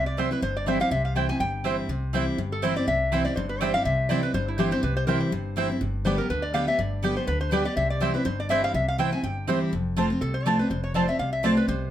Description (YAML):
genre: bluegrass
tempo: 245 BPM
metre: 4/4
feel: swing 55% on 8ths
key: C major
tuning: A4 = 440 Hz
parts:
  - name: lap resonator guitar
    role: melody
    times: 0.0-11.9 s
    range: E4 to Ab5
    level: -28 LUFS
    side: left 1 dB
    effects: none
  - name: picked steel-string acoustic guitar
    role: accompaniment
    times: 0.0-11.9 s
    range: F2 to G4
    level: -27 LUFS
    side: left 1 dB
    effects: none
  - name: upright bass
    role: bass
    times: 0.0-11.9 s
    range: F1 to D2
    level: -30 LUFS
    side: equal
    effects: none
  - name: mandolin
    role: stabs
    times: 0.2-11.5 s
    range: B3 to A5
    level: -28 LUFS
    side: right 6 dB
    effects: none
room: moderate studio reverb, RT60 0.6 s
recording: none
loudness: -23 LUFS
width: side -11 dB against mid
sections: 0.0-1.9 A section; 1.9-9.7 A section; 9.7-11.9 B section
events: none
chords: 0.0 C; 5.8 G; 7.8 C; 9.7 F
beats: 0.18 0.42 0.67 | 0.92 1.16 1.41 1.65 | 1.90 2.14 2.38 2.63 | 2.87 3.12 3.36 3.61 | 3.85 4.10 4.34 4.59 | 4.83 5.08 5.32 5.57 | 5.81 6.06 6.30 6.55 | 6.79 7.04 7.28 7.53 | 7.77 8.01 8.26 8.50 | 8.75 8.99 9.24 9.48 | 9.73 9.97 10.21 10.46 | 10.70 10.95 11.19 11.44 | 11.68